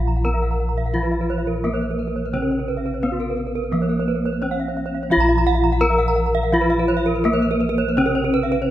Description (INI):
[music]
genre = gamelan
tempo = 86 BPM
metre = 4/4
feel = straight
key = Bb pelog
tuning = A4 = 440 Hz
[part]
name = gamelan-type bronze metallophone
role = melody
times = 0.0-8.7 s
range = Bb3 to Bb4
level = -21 LUFS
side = left 1 dB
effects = none
[part]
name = gamelan-type bronze metallophone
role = accompaniment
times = 0.0-8.7 s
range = C3+50c to Bb3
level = -29 LUFS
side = right 1 dB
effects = none
[part]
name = gamelan-type bronze metallophone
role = arpeggios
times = 0.0-8.7 s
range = Bb4 to Bb5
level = -28 LUFS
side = left 4 dB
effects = none
[part]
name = gamelan-type bossed gongs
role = bass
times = 0.0-8.7 s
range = Bb1 to F4-45c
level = -24 LUFS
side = equal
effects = none
[part]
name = gamelan-type bronze metallophone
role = arpeggios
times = 0.1-8.6 s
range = Gb4-40c to Bb5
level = -26 LUFS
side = right 7 dB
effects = none
[sound]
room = light reverb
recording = close, detailed microphones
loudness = -18 LUFS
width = side -12 dB against mid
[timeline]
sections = 0.0-8.7 A section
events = none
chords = none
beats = 0.25 0.94 1.64 | 2.33 3.03 3.73 4.42 | 5.12 5.82 6.53 7.25 | 7.98